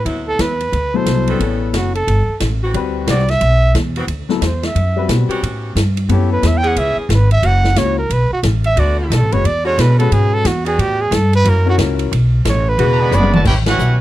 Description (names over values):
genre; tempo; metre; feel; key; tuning
jazz, big band swing; 179 BPM; 4/4; swing 62% on 8ths; unclear; A4 = 436 Hz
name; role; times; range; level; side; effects
breathy trumpet; melody; 0.0-13.4 s; F#4 to G5; -18 LUFS; right 2 dB; none
upright bass; bass; 0.0-14.0 s; E1 to B2; -15 LUFS; equal; none
clear saxophone section; sustained chords; 0.1-13.3 s; C3 to A4; -23 LUFS; left 1 dB; none
swinging big-band drum kit; drums; 0.1-13.9 s; crash cymbal, hi-hat, kick drum, ride cymbal, snare drum, toms; -21 LUFS; equal; none
warm baby grand piano; accompaniment; 0.9-13.3 s; B2 to C#5; -20 LUFS; left 10 dB; none
clear trumpet section; melody; 12.9-14.0 s; E4 to B5; -19 LUFS; right 1 dB; slapback echo
brilliant trombone section; second line; 13.0-14.0 s; D3 to G4; -23 LUFS; right 3 dB; none
room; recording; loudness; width
little or no reverb; dry, close 1970s-style studio recording; -13 LUFS; side -14 dB against mid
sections
0.0-13.5 A section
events
trumpet solo 0.0-13.5; drum fill 13.1-13.5; band accent 13.6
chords
0.1 D13; 1.4 A13; 2.7 D13; 5.4 A13; 6.8 C#m7; 7.4 F#7; 8.1 Bm7; 9.4 E13; 10.8 A13; 11.5 F#7; 12.1 Aadd9; 12.8 E13; 13.5 A13